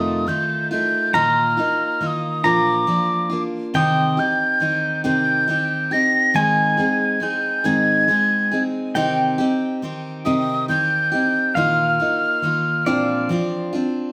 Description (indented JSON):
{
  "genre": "acoustic folk duo or small band",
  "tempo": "46 BPM (dotted quarters)",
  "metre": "6/8",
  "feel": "straight",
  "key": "unclear",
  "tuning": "A4 = 439 Hz",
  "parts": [
    { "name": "mellow hollow wooden whistle", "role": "melody", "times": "0.0-13.3 s", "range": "D6 to Bb6", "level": "-22 LUFS", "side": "equal", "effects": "none" },
    { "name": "pedal steel guitar", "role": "second line", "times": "0.0-13.7 s", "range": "D5 to Bb5", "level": "-25 LUFS", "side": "equal", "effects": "none" },
    { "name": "picked steel-string acoustic guitar", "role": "accompaniment", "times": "0.0-14.1 s", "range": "F2 to Ab4", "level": "-24 LUFS", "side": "equal", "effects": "none" }
  ],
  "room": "moderate large studio reverb, RT60 0.9 s",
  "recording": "none",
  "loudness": "-20 LUFS",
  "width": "mono",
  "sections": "0.0-14.1 A section",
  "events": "none",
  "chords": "0.0 F7; 1.1 Bbsus4; 2.4 Bb; 3.7 Cm; 6.3 Ab; 8.9 Cm; 11.6 Bbsus4; 12.9 Bbadd9",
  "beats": "| 1.14 2.44 | 3.74 5.04 | 6.34 7.65 | 8.95 10.25 | 11.55 12.86"
}